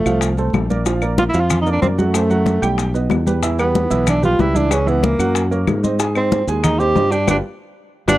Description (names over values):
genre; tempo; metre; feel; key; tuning
Afro-Cuban jazz; 187 BPM; 4/4; straight; unclear; A4 = 440 Hz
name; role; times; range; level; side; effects
breathy tenor saxophone; melody; 0.0-8.2 s; A3 to G4; -18 LUFS; right 1 dB; none
warm baby grand piano; accompaniment; 0.1-8.2 s; E3 to Ab5; -22 LUFS; right 4 dB; none
modern bright fingered electric bass; bass; 0.1-8.2 s; G1 to G#2; -20 LUFS; left 1 dB; none
claves; percussion; 0.1-8.2 s; none; -28 LUFS; left 5 dB; none
congas; percussion; 0.1-8.2 s; none; -22 LUFS; left 2 dB; none
maracas; percussion; 0.1-8.2 s; none; -31 LUFS; left 6 dB; none
bongos; percussion; 0.2-8.2 s; none; -25 LUFS; left 6 dB; none
room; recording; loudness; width
small room ambience; dry, close 1970s-style studio recording; -15 LUFS; side -15 dB against mid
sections
0.0-8.2 A section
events
band accent 7.3-8.2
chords
0.0 F; 0.9 Bb; 2.1 F#dim; 2.8 Baug; 3.4 Em; 4.7 Dbm7; 5.4 F#add9; 6.0 Abmaj7; 7.3 G7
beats
0.22 0.54 | 0.86 1.18 1.50 1.82 | 2.15 2.47 2.79 3.11 | 3.43 3.75 4.07 4.39 | 4.71 5.03 5.35 5.67 | 6.00 6.32 6.64 6.96 | 7.28 7.60 7.92